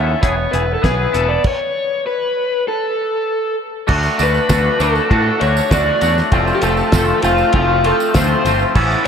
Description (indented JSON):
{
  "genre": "indie rock",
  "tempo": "98 BPM",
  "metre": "4/4",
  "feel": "straight",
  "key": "unclear",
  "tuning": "A4 = 440 Hz",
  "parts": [
    { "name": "raw garage guitar", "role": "melody", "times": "0.0-9.1 s", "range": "F4 to E5", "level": "-18 LUFS", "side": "left 2 dB", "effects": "overdrive, diffuse ambient delay" },
    { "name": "twangy electric guitar", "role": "riff", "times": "0.0-9.1 s", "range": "E3 to A4", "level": "-20 LUFS", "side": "left 7 dB", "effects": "analog chorus" },
    { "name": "twangy electric guitar", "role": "riff", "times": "0.0-9.1 s", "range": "E3 to A4", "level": "-21 LUFS", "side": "right 9 dB", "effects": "lush chorus, diffuse ambient delay" },
    { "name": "growling picked electric bass", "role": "bass", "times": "0.0-8.9 s", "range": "E1 to A2", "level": "-19 LUFS", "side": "equal", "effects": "overdrive" },
    { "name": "cloth-damped thuddy drum kit", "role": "drums", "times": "0.2-9.1 s", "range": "crash cymbal, hi-hat, kick drum, ride cymbal, snare drum", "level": "-20 LUFS", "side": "equal", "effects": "none" },
    { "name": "tambourine", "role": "percussion", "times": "3.9-9.0 s", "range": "none", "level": "-33 LUFS", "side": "right 9 dB", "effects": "none" }
  ],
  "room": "moderate church reverb, RT60 3.2 s",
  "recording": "dreamy mix soaked in reverb",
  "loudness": "-13 LUFS",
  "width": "side -7 dB against mid",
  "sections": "0.0-3.9 A section; 3.9-9.1 B section",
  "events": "stop 1.4-3.9",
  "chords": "0.2 E6; 1.1 Esus4; 3.9 D; 6.3 F"
}